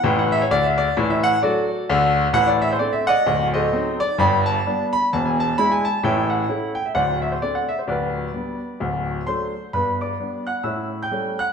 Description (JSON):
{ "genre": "jazz, stride piano", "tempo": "130 BPM", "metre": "4/4", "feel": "swing 59% on 8ths", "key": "G major", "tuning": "A4 = 436 Hz", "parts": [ { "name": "clear grand piano", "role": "solo", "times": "0.0-11.5 s", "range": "D1 to G6", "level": "-18 LUFS", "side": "equal", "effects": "none" } ], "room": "wet large studio reverb, RT60 1.3 s", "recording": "band playing live in one room", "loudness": "-18 LUFS", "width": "side -6 dB against mid", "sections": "0.0-9.7 A section; 9.7-11.5 B section", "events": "none", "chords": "0.0 A7; 0.5 D; 2.3 D5/A; 3.3 D7b9; 4.2 G; 5.1 E7; 6.0 A; 7.0 D5; 7.9 G/D; 8.8 D; 9.7 G; 10.6 A7" }